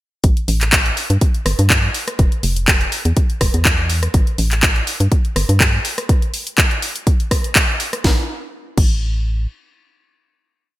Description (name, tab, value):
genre	piano house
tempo	123 BPM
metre	4/4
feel	swing 54% on 16ths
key	unclear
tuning	A4 = 439 Hz
part	organ-like FM bass	bass	0.2-9.5 s	E1 to G2	-17 LUFS	equal	sidechain pumping
part	electronic kick drum	drums	0.2-8.9 s	none	-16 LUFS	equal	none
part	house drum kit	drums	0.2-8.9 s	crash cymbal, handclaps, hi-hat, rim click, snare drum	-18 LUFS	equal	gated reverb
room	digital ambience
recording	bright 1980s-style digital production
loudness	-14 LUFS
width	side -16 dB against mid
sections	0.2-8.0 drop; 8.0-10.8 final note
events	drop 0.2-8.0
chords	none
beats	| 0.24 0.73 1.21 1.70 | 2.19 2.68 3.17 3.65 | 4.14 4.63 5.12 5.60 | 6.09 6.58 7.07 7.55 | 8.04 8.53 9.02